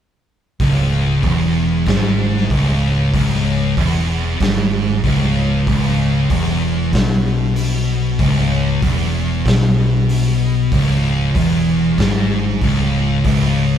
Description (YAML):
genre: stoner and doom metal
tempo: 95 BPM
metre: 4/4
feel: straight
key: C# minor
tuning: A4 = 440 Hz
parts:
  - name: thick fuzz guitar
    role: riff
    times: 0.6-13.8 s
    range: C#2 to B2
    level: -18 LUFS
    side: left 6 dB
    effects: distortion
  - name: thick fuzz guitar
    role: riff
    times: 0.6-13.8 s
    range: C#2 to B2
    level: -20 LUFS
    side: right 8 dB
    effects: distortion
  - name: fingered electric bass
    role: bass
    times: 0.6-13.8 s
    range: C#1 to B1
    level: -22 LUFS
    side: equal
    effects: overdrive
  - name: raw garage drum kit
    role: drums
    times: 0.6-13.4 s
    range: hi-hat, kick drum, snare drum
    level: -20 LUFS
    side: right 1 dB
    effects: none
room: moderate stone room reverb, RT60 1.2 s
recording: band playing live in one room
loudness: -14 LUFS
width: side -9 dB against mid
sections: 0.6-13.8 A section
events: none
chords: 0.6 C#m